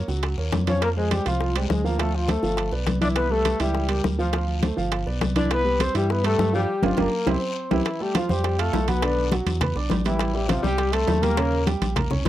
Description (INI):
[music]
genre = Afro-Cuban jazz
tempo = 205 BPM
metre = 4/4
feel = straight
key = C major, F major from 7.9 s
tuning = A4 = 441 Hz
[part]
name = warm grand piano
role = accompaniment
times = 0.0-12.3 s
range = C3 to F6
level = -28 LUFS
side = right 4 dB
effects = none
[part]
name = round analog bass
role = bass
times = 0.0-12.3 s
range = G1 to G2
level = -26 LUFS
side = equal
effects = none
[part]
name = bongos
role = percussion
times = 0.1-12.3 s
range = none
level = -30 LUFS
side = left 8 dB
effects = none
[part]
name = congas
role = percussion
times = 0.1-12.3 s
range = none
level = -27 LUFS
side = left 2 dB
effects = none
[part]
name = guiro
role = percussion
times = 0.1-12.3 s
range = none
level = -40 LUFS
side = left 8 dB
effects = none
[part]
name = timbales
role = percussion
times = 0.2-12.3 s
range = none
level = -30 LUFS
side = right 11 dB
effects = none
[part]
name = breathy trumpet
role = melody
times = 0.7-11.7 s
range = E4 to D5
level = -27 LUFS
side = equal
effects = none
[part]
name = breathy tenor saxophone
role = second line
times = 0.7-11.7 s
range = E3 to D4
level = -29 LUFS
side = left 5 dB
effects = none
[sound]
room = light reverb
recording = dry, close 1970s-style studio recording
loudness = -20 LUFS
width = side -13 dB against mid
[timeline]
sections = 0.0-7.9 A section; 7.9-12.3 B section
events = band accent 6.7-7.9; drum fill 7.0-7.9, 12.1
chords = 0.0 F#; 0.8 Fm; 2.0 Dm7; 2.6 G6; 3.2 Cmaj7; 3.8 C#dim7; 4.3 Dm7; 4.9 G7; 5.5 Cmaj7; 6.7 Gm7; 7.3 C; 7.9 Fadd9; 9.0 Bm; 9.6 E5; 10.2 Am7; 11.4 Eb6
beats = 0.23 0.53 | 0.82 1.11 1.41 1.70 | 1.99 2.29 2.58 2.87 | 3.16 3.46 3.75 4.04 | 4.34 4.63 4.92 5.22 | 5.51 5.80 6.10 6.39 | 6.68 6.98 7.27 7.56 | 7.86 8.15 8.44 8.74 | 9.03 9.32 9.62 9.91 | 10.20 10.50 10.79 11.08 | 11.38 11.67 11.96 12.26